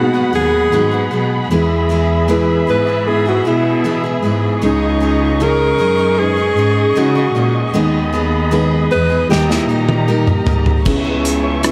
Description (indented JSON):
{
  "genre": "pop ballad",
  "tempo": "77 BPM",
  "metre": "4/4",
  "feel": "straight",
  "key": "G# minor",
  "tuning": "A4 = 441 Hz",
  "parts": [
    { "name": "breathy alto saxophone", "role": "melody", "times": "0.0-11.7 s", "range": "D#4 to B4", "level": "-20 LUFS", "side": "equal", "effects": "slapback echo" },
    { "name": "felt-muted upright piano", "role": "accompaniment", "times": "0.0-11.7 s", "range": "G#2 to B4", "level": "-21 LUFS", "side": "equal", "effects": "none" },
    { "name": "warm studio string section", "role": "sustained chords", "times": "0.0-11.7 s", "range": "G4 to C#6", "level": "-25 LUFS", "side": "equal", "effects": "none" },
    { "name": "picked steel-string acoustic guitar", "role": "arpeggios", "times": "0.0-11.7 s", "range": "G#2 to A#4", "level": "-26 LUFS", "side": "equal", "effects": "slapback echo" },
    { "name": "rich chamber cello section", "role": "bass", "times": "0.0-11.7 s", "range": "C#2 to C#3", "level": "-20 LUFS", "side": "equal", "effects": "none" },
    { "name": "loose indie drum kit", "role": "drums", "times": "9.3-11.7 s", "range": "crash cymbal, hi-hat, kick drum, rim click, snare drum, toms", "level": "-19 LUFS", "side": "equal", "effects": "none" }
  ],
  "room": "moderate lush hall reverb, RT60 2.8 s",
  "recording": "big arena sound",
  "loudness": "-15 LUFS",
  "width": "mono",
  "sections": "0.0-10.9 A section",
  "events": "drum fill 9.3-10.9",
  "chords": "0.0 G#m7; 1.5 E; 4.6 C#sus2; 7.7 G#m/D#; 9.3 D#; 10.9 C#m7"
}